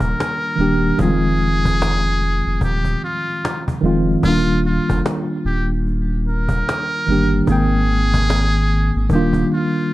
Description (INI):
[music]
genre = lo-fi hip hop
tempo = 74 BPM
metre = 4/4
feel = swing 63% on 16ths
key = Eb major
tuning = A4 = 440 Hz
[part]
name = trumpet with metal mute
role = melody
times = 0.0-9.9 s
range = F4 to Bb4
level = -23 LUFS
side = equal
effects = none
[part]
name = tine electric piano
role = accompaniment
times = 0.0-9.9 s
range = Eb3 to G5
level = -19 LUFS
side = equal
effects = fast stereo tremolo, cassette tape
[part]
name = warm sub bass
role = bass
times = 0.0-9.4 s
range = Eb1 to Ab1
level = -20 LUFS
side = equal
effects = none
[part]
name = cajon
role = drums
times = 0.0-9.8 s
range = none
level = -24 LUFS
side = equal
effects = none
[sound]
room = light reverb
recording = none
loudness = -15 LUFS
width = side -16 dB against mid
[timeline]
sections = 0.0-9.9 A section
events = none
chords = 0.0 Ebmaj9; 1.0 Fm7; 4.2 Ebmaj9; 7.5 Abmaj9; 9.1 Ebmaj9